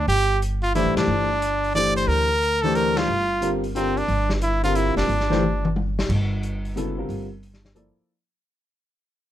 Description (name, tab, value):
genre	modal jazz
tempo	180 BPM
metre	3/4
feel	swing 65% on 8ths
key	G dorian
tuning	A4 = 440 Hz
part	bright trumpet	melody	0.0-5.7 s	C4 to D5	-22 LUFS	right 1 dB	plate reverb
part	upright bass	bass	0.0-8.0 s	F1 to D2	-25 LUFS	equal	none
part	vintage drum kit	drums	0.1-7.9 s	crash cymbal, hi-hat, kick drum, ride cymbal, snare drum, toms	-30 LUFS	left 2 dB	none
part	warm baby grand piano	accompaniment	0.7-8.1 s	C#3 to D5	-25 LUFS	left 2 dB	none
room	light reverb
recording	none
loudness	-20 LUFS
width	side -12 dB against mid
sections	0.0-6.1 A section; 6.1-8.1 B section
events	band accent 0.9, 2.9; drum fill 5.4-6.1; fade-out 6.1-8.1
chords	0.0 Gm9